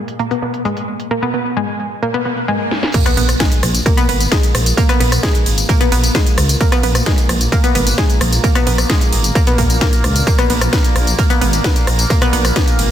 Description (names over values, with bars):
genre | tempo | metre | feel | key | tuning
driving peak-time techno | 131 BPM | 4/4 | straight | unclear | A4 = 440 Hz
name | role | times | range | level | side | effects
analog drone | drone | 0.0-12.9 s | Bb2 to Bb3 | -25 LUFS | equal | chorus, sidechain pumping
techno drum kit | drums | 0.1-12.9 s | crash cymbal, hi-hat, ride cymbal, rim click, snare drum, tambourine | -19 LUFS | equal | low-pass filter on hats, low-pass filter on cymbals, low-pass filter on snare, low-pass filter on perc, low-pass filter on room
analog pluck | riff | 0.2-12.6 s | Ab3 to Cb4 | -19 LUFS | equal | chorus, sidechain pumping, tape echo
swell and impact | sound effects | 2.3-4.8 s | none | -27 LUFS | equal | none
electronic kick drum | drums | 2.9-12.7 s | none | -15 LUFS | equal | none
dark detuned saw bass | bass | 3.2-12.9 s | Ab1 to Db2 | -16 LUFS | equal | tube saturation, sidechain pumping
room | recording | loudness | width
light reverb | dense, heavily limited modern master | -12 LUFS | side -10 dB against mid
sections
0.0-2.9 A section; 2.9-12.9 B section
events
filter sweep on synth arpeggio sound 0.0-2.9; swell 2.3-2.9; drum fill 2.7; drop 2.9-12.9; impact 2.9-4.8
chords
0.0 Abmadd9 (rootless); 2.9 N.C.